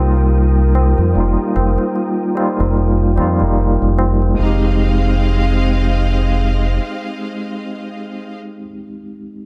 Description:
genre	trip hop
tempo	74 BPM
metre	4/4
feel	swing 58% on 16ths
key	F minor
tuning	A4 = 440 Hz
part	overdriven tine electric piano	accompaniment	0.0-9.5 s	G3 to Bb4	-22 LUFS	equal	tremolo, low-pass filter, tape echo
part	bright symphonic string section	sustained chords	0.0-8.4 s	Ab3 to Eb6	-27 LUFS	equal	low-pass filter
part	deep dub fingered electric bass	bass	0.0-6.8 s	F1 to F2	-17 LUFS	equal	tube saturation
part	wind-like tuned noise texture	texture	0.0-4.4 s	G3 to G4	-37 LUFS	equal	none
part	tabla	percussion	0.2-4.4 s	none	-29 LUFS	equal	none
room	studio reverb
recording	none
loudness	-16 LUFS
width	mono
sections	0.0-4.4 A section; 4.4-7.6 B section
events	filter sweep on tine electric piano 0.0-4.4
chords	0.0 Ebadd9/F; 4.4 Fm7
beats	0.33 | 1.14 1.95 2.76 3.58 | 4.39 5.20 6.01 6.82

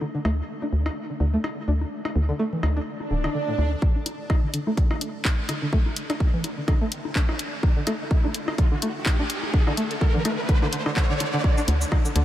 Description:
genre	minimal techno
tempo	126 BPM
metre	4/4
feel	swing 56% on 16ths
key	unclear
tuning	A4 = 441 Hz
part	string-like resonator pluck	riff	0.0-12.2 s	A2 to D4	-29 LUFS	equal	chorus, sidechain pumping, diffuse ambient delay
part	bongos, cowbell and congas	percussion	0.0-12.0 s	none	-33 LUFS	left 2 dB	overdrive, diffuse ambient delay
part	hollow knocking FM bass	bass	0.2-3.8, 11.7-12.2 s	D1 to D2	-22 LUFS	equal	sidechain pumping
part	swell and riser	sound effects	3.0-11.4 s	none	-32 LUFS	right 1 dB	none
part	electronic kick drum	drums	3.8-12.0 s	none	-21 LUFS	equal	none
part	house drum kit	drums	4.1-12.2 s	handclaps, hi-hat, shaker	-31 LUFS	left 1 dB	low-pass filter on hats, low-pass filter on snare, low-pass filter on perc, low-pass filter on room
room	moderate huge ambient reverb, RT60 7.9 s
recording	dreamy mix soaked in reverb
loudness	-22 LUFS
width	side -13 dB against mid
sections	0.0-3.8 A section; 3.8-11.4 B section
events	swell 3.0-3.8; build-up 3.8-11.4; riser 3.8-11.4; filter sweep on synth pluck 3.8-11.4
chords	0.0 D5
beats	| 0.01 0.49 0.96 1.44 | 1.92 2.39 2.87 3.35 | 3.82 4.30 4.78 5.25 | 5.73 6.20 6.68 7.16 | 7.63 8.11 8.58 9.06 | 9.54 10.01 10.49 10.96 | 11.44 11.92

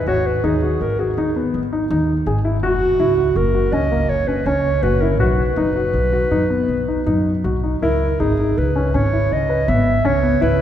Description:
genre	contemporary instrumental, chamber music in an uneven meter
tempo	163 BPM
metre	7/4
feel	straight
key	unclear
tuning	A4 = 440 Hz
part	dark clarinet	melody	0.0-10.6 s	F#4 to E5	-21 LUFS	right 1 dB	none
part	dark grand piano	arpeggios	0.1-10.6 s	A#3 to B4	-21 LUFS	left 2 dB	none
part	upright bass	bass	0.1-10.6 s	F#1 to F#2	-20 LUFS	equal	none
room	wet cathedral reverb, RT60 4.2 s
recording	recorded in a church or concert hall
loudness	-16 LUFS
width	side -10 dB against mid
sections	0.0-7.8 A section; 7.8-10.6 B section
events	none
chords	0.0 G#7(no3); 2.6 F#; 5.2 B; 7.8 C#m7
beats	| 0.07 0.44 0.81 1.18 1.54 1.91 2.27 | 2.63 3.00 3.36 3.73 4.10 4.46 4.83 | 5.20 5.57 5.94 6.31 6.69 7.07 7.45 | 7.83 8.20 8.57 8.95 9.31 9.68 10.05 | 10.42

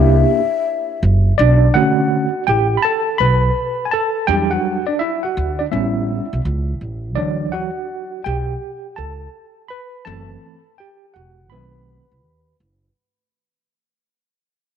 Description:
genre	hip hop, jazz-hop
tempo	83 BPM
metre	4/4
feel	swing 65% on 16ths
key	B minor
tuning	A4 = 444 Hz
part	breathy mellow bansuri	melody	0.0-1.0 s	E5	-21 LUFS	left 10 dB	none
part	tine electric piano	accompaniment	0.0-12.6 s	D3 to B5	-18 LUFS	right 1 dB	overdrive, fast stereo tremolo
part	upright bass	bass	0.0-12.9 s	E1 to E2	-17 LUFS	right 1 dB	none
room	light reverb, small room reverb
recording	none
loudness	-15 LUFS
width	side -8 dB against mid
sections	0.0-1.4 A section; 1.4-13.0 B section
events	fade-out 1.4-13.0; tine electric piano solo 1.4-13.0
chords	0.0 C9; 1.4 Bm7; 4.3 Em9; 5.7 A9; 7.2 Dmaj9; 10.1 F#m7b5; 11.5 B7b9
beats	0.67 | 1.39 2.11 2.84 3.56 | 4.28 5.00 5.73 6.45 | 7.17 7.90 8.62 9.34 | 10.06 10.79 11.51 12.23

